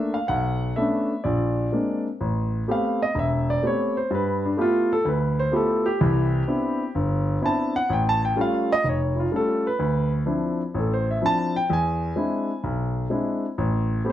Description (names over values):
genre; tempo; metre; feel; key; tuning
solo jazz; 126 BPM; 4/4; swing 69% on 8ths; A minor; A4 = 442 Hz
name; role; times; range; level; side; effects
warm grand piano; solo; 0.0-14.1 s; E1 to A5; -21 LUFS; equal; slapback echo
room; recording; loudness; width
little or no reverb; dry, close 1970s-style studio recording; -21 LUFS; side -12 dB against mid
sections
0.0-2.2 A section; 2.2-14.1 B section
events
grand piano solo 2.2-14.1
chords
0.3 Bm9; 1.2 Bb9; 2.2 Am9; 4.1 G13; 6.0 Cmaj9; 7.9 Aaug7; 9.8 Dm9; 11.7 E7b13; 13.6 Am9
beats
| 0.30 0.77 1.25 1.72 | 2.19 2.67 3.14 3.62 | 4.09 4.57 5.04 5.52 | 5.99 6.47 6.94 7.42 | 7.89 8.37 8.84 9.31 | 9.79 10.26 10.74 11.21 | 11.69 12.16 12.63 13.11 | 13.58 14.05